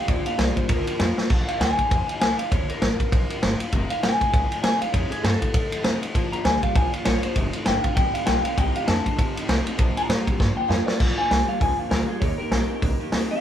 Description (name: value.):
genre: rockabilly.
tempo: 198 BPM.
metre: 4/4.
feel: swing 59% on 8ths.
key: Bb major.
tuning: A4 = 440 Hz.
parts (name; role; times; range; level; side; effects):
electric guitar through a small old amp; melody; 0.0-13.4 s; Ab4 to Bb5; -26 LUFS; left 1 dB; none.
picked steel-string acoustic guitar; accompaniment; 0.0-13.4 s; F2 to G4; -34 LUFS; left 4 dB; none.
electric guitar through a small old amp; riff; 0.0-1.3, 6.2-13.4 s; F2 to C4; -31 LUFS; right 1 dB; none.
upright bass; bass; 0.1-13.3 s; F1 to Bb2; -28 LUFS; equal; none.
vintage drum kit; drums; 0.1-13.2 s; crash cymbal, hi-hat, kick drum, ride cymbal, snare drum; -23 LUFS; equal; none.
room: light reverb.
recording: band playing live in one room.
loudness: -20 LUFS.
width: side -10 dB against mid.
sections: 0.0-1.3 A section; 1.3-11.0 A section; 11.0-13.4 B section.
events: clean electric guitar solo 0.0-11.0; drum fill 1.1, 10.4-11.0.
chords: 0.1 Bb; 3.7 F7; 6.2 Bb; 7.4 F7; 9.8 Bb; 12.2 Eb.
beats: | 0.08 0.39 0.69 0.99 | 1.30 1.60 1.90 2.21 | 2.51 2.81 3.12 3.42 | 3.72 4.03 4.33 4.63 | 4.94 5.24 5.54 5.85 | 6.15 6.45 6.76 7.06 | 7.36 7.67 7.97 8.27 | 8.57 8.88 9.18 9.48 | 9.79 10.09 10.39 10.70 | 11.00 11.30 11.61 11.91 | 12.21 12.52 12.82 13.12.